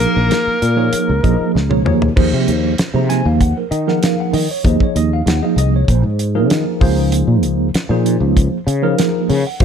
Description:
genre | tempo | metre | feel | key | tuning
electric jazz fusion | 97 BPM | 4/4 | straight | Eb dorian | A4 = 440 Hz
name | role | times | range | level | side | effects
biting lead guitar | melody | 0.0-1.5 s | Bb4 | -19 LUFS | left 1 dB | overdrive
breathy tenor saxophone | second line | 0.0-1.5 s | Bb3 | -24 LUFS | left 4 dB | none
tine electric piano | accompaniment | 0.0-9.6 s | F3 to Bb5 | -18 LUFS | right 2 dB | medium stereo tremolo, lush chorus
sustaining fretless electric bass | bass | 0.0-9.6 s | Bb1 to Eb3 | -16 LUFS | equal | wide subtle chorus
damped 70s drum kit | drums | 0.0-9.6 s | crash cymbal, hi-hat, kick drum, snare drum, toms | -18 LUFS | equal | none
room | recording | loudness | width
little or no reverb | none | -13 LUFS | side -7 dB against mid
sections
0.0-2.2 A section; 2.2-9.6 B section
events
drum fill 1.5-2.2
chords
0.0 Bbm7; 2.2 Ebsus2; 6.8 Dbmaj9

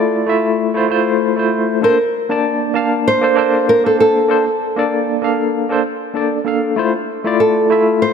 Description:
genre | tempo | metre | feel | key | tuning
chillout | 97 BPM | 4/4 | swing 55% on 16ths | unclear | A4 = 440 Hz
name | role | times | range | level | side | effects
nylon-string guitar | melody | 0.0-8.1 s | A4 to C5 | -16 LUFS | right 1 dB | tape echo
barky tine electric piano | accompaniment | 0.0-8.1 s | A3 to A5 | -15 LUFS | moving between left 5 dB and right 2 dB | fast tremolo, auto-pan, tape echo
room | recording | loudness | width
moderate lush hall reverb, RT60 3.1 s | none | -13 LUFS | side -6 dB against mid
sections
0.0-8.1 A section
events
none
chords
0.0 Fmaj7; 1.8 Bbmaj9; 6.8 Fmaj7

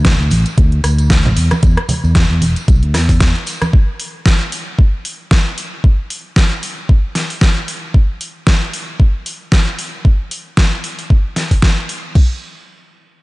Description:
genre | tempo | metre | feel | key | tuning
nu-disco, nu disco | 114 BPM | 4/4 | swing 56% on 16ths | unclear | A4 = 441 Hz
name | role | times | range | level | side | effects
fingered electric bass | bass | 0.0-3.3 s | E1 to E2 | -14 LUFS | equal | none
pop drum kit | drums | 0.0-12.0 s | hi-hat, rim click, snare drum | -19 LUFS | equal | overdrive
congas and tambourine | percussion | 0.0-3.7 s | none | -21 LUFS | right 2 dB | none
pop drum kit | drums | 0.1-12.3 s | crash cymbal, kick drum | -11 LUFS | equal | overdrive
room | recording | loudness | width
little or no reverb | dark, warm production, nothing above 10.4 kHz | -12 LUFS | side -21 dB against mid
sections
0.0-12.2 A section; 12.2-13.2 B section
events
none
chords
none

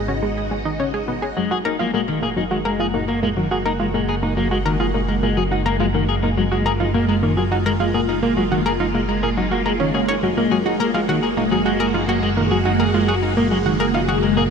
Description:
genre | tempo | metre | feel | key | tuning
ambient, sequencer-driven space music | 105 BPM | 4/4 | straight | unclear | A4 = 440 Hz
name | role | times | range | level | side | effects
expressive synth lead | melody | 0.0-0.8 s | D#5 | -37 LUFS | equal | analog chorus, tape echo
phased string machine | sustained chords | 0.0-14.5 s | G#3 to A#5 | -23 LUFS | equal | ensemble chorus, phaser
fat analog bass | bass | 0.0-14.5 s | G#1 | -25 LUFS | equal | none
analog pluck | riff | 0.1-14.4 s | F#3 to C#5 | -22 LUFS | equal | chorus, tape echo
electric guitar at the edge of break-up | arpeggios | 1.4-14.4 s | D#3 to G#4 | -23 LUFS | moving between left 7 dB and right 1 dB | auto-pan, tape echo
room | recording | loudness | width
wet huge ambient reverb, RT60 7.7 s | none | -17 LUFS | side -6 dB against mid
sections
0.0-14.5 A section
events
fade-in on string machine 0.0-14.5; filter sweep on synth arpeggio sound 0.0-14.5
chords
0.0 G#7(no3); 1.4 F#add9

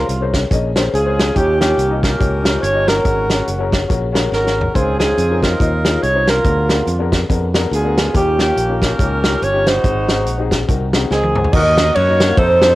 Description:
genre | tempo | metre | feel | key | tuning
uptempo gospel | 142 BPM | 4/4 | swing 59% on 8ths | unclear | A4 = 440 Hz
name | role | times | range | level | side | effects
warm saxophone section | melody | 0.0-12.8 s | Bb3 to Eb5 | -16 LUFS | right 1 dB | cassette tape
dark grand piano | accompaniment | 0.0-12.8 s | Ab2 to Gb5 | -22 LUFS | left 5 dB | cassette tape
modern bright fingered electric bass | bass | 0.0-12.7 s | Gb1 to Gb2 | -20 LUFS | equal | none
natural country drum kit | drums | 0.1-12.7 s | crash cymbal, hi-hat, kick drum, ride cymbal, snare drum, toms | -18 LUFS | equal | cassette tape
room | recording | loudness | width
moderate spring reverb, RT60 1.9 s, studio ambience | home recording on cassette | -13 LUFS | side -17 dB against mid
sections
0.0-11.5 A section; 11.5-12.8 B section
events
drum fill 4.3-4.8, 11.1-11.5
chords
0.0 Bbm9; 1.4 Eb9; 3.1 Ab9sus4; 4.8 Dbmaj9; 6.4 Bb7b9/D; 8.1 Eb9; 9.8 Ab7; 11.5 Ebm

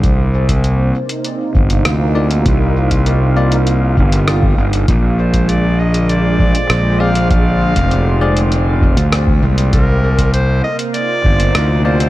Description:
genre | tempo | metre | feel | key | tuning
ambient dub | 99 BPM | 4/4 | straight | C minor | A4 = 440 Hz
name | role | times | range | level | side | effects
warm analog pad | sustained chords | 0.0-12.1 s | Bb2 to F5 | -20 LUFS | right 1 dB | chorus
fuzz fingered electric bass | bass | 0.0-12.1 s | F1 to D2 | -13 LUFS | equal | overdrive
electronic kick drum | drums | 0.0-11.4 s | none | -16 LUFS | equal | none
lo-fi sampler-style drum kit | drums | 0.0-12.1 s | hi-hat, rim click | -21 LUFS | equal | none
barky tine electric piano | stabs | 2.2-12.0 s | Bb3 to D5 | -25 LUFS | left 3 dB | none
bright clarinet | melody | 5.2-12.1 s | Bb4 to F5 | -20 LUFS | equal | dub echo
room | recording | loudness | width
little or no reverb | none | -11 LUFS | side -16 dB against mid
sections
0.0-12.1 A section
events
none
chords
0.0 Cm11; 4.9 Bb9; 9.7 Cm11

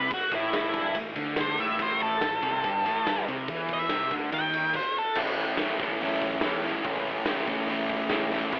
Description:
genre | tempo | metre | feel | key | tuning
garage rock duo or trio | 142 BPM | 4/4 | straight | A major from 5.2 s | A4 = 442 Hz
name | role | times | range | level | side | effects
octave-fuzz lead guitar | melody | 0.0-5.2 s | E4 to G5 | -30 LUFS | equal | distortion, cassette tape
crunchy overdriven guitar | riff | 0.0-8.6 s | G2 to E4 | -32 LUFS | equal | cassette tape
growling picked electric bass | bass | 0.0-8.6 s | G1 to F#2 | -42 LUFS | equal | overdrive
raw garage drum kit | drums | 0.1-8.6 s | crash cymbal, hi-hat, kick drum, ride cymbal, snare drum | -34 LUFS | equal | cassette tape
room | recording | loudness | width
light reverb | home recording on cassette, telephone sound | -28 LUFS | mono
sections
0.0-5.2 A section; 5.2-8.6 B section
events
none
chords
0.0 A5; 5.2 A

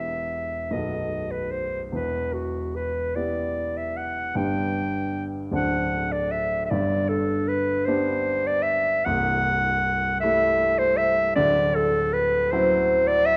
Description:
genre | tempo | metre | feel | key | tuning
classical, romantic duo for clarinet and grand piano | 51 BPM (dotted quarters) | 6/8 | uneven beats, rubato | unclear | A4 = 440 Hz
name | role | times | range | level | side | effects
warm clarinet | melody | 0.0-13.4 s | F#4 to G5 | -25 LUFS | equal | none
warm baby grand piano | accompaniment | 0.0-13.4 s | B0 to A4 | -30 LUFS | equal | none
room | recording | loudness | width
wet recital hall reverb, RT60 1.4 s | dark, warm production | -24 LUFS | mono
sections
0.0-13.4 A section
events
none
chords
0.0 Em; 0.7 B7; 1.9 Em; 4.4 G; 5.5 D7; 6.7 G; 9.1 Am7/C; 11.4 D9

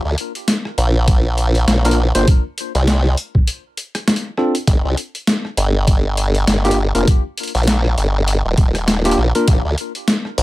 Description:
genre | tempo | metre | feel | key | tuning
glitch hop | 100 BPM | 4/4 | swing 58% on 16ths | unclear | A4 = 439 Hz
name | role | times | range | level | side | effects
formant-sweep wobble bass | bass | 0.0-10.4 s | Eb1 to D2 | -16 LUFS | equal | chorus, tube saturation
boom bap sampler-style drum kit | drums | 0.2-10.4 s | hi-hat, rim click, snare drum | -19 LUFS | equal | overdrive
electronic kick drum | drums | 1.1-9.6 s | none | -13 LUFS | equal | overdrive
tine electric piano | stabs | 1.9-9.5 s | Bb3 to C5 | -20 LUFS | left 1 dB | sidechain pumping, ping-pong delay
room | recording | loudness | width
little or no reverb | none | -14 LUFS | side -18 dB against mid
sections
0.0-10.4 A section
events
break 3.5-4.7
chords
0.0 Bb; 2.3 N.C.; 4.7 Gm7; 7.1 Eb; 9.5 Bb

